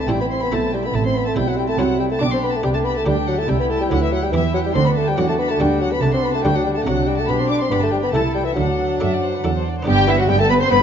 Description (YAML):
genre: classical, baroque-style concerto movement with solo episodes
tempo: 141 BPM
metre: 3/4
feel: straight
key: G major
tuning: A4 = 441 Hz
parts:
  - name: mellow bassoon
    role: melody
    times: 0.0-10.8 s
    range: E3 to D4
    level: -21 LUFS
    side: left 2 dB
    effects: none
  - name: rich chamber violin section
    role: melody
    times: 0.0-10.8 s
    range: E4 to C6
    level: -27 LUFS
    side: left 3 dB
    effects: none
  - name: warm chamber violin section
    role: second line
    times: 0.0-10.8 s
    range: E4 to D6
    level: -25 LUFS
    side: left 3 dB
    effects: none
  - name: buff-stop harpsichord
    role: accompaniment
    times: 0.0-10.8 s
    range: G2 to C5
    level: -28 LUFS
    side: right 1 dB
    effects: none
  - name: dark chamber viola section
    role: accompaniment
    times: 0.0-10.8 s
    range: B3 to E4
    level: -26 LUFS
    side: right 1 dB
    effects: none
  - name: rich chamber double bass section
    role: bass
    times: 0.0-10.8 s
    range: G1 to F#2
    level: -24 LUFS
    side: right 3 dB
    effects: none
  - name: warm chamber cello section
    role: bass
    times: 0.0-10.8 s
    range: G2 to F#3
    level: -25 LUFS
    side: right 4 dB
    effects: none
room: moderate recital hall reverb, RT60 1.5 s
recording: dark, warm production, nothing above 7.4 kHz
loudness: -16 LUFS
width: side -8 dB against mid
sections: 0.0-9.9 A section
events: none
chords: 0.0 Am; 2.2 G/B; 3.5 C; 4.8 D; 6.0 D7/C; 7.3 G/B; 8.1 Am/C; 8.6 D; 9.9 G